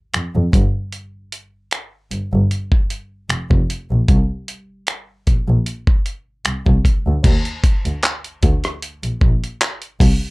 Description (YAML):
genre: contemporary R&B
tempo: 76 BPM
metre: 4/4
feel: swing 54% on 16ths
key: Eb major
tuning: A4 = 439 Hz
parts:
  - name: dark double bass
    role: bass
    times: 0.1-10.1 s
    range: F1 to F2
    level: -18 LUFS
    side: equal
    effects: tube saturation
  - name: dusty soul sampler-style drum kit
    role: drums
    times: 0.1-10.2 s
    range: crash cymbal, finger snaps, handclaps, hi-hat, kick drum, rim click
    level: -16 LUFS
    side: equal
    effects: none
room: little or no reverb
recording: dry, gritty hardware recording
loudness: -16 LUFS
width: side -24 dB against mid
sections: 0.0-7.2 A section; 7.2-10.3 B section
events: none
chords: none